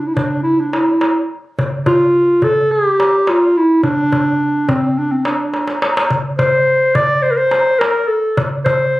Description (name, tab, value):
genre	Turkish makam ensemble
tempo	106 BPM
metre	4/4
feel	straight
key	unclear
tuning	A4 = 440 Hz
part	dark clarinet	melody	0.0-9.0 s	C4 to D5	-13 LUFS	equal	none
part	darbuka	percussion	0.2-9.0 s	none	-19 LUFS	equal	none
room	light reverb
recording	recorded on a phone in the room, studio reverb, compression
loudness	-12 LUFS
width	side -18 dB against mid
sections	0.0-9.0 A section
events	drum fill 5.5-6.1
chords	none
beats	0.45 1.02 | 1.58 2.15 2.71 3.28 | 3.84 4.41 4.97 5.54 | 6.10 6.67 7.23 7.80 | 8.37 8.93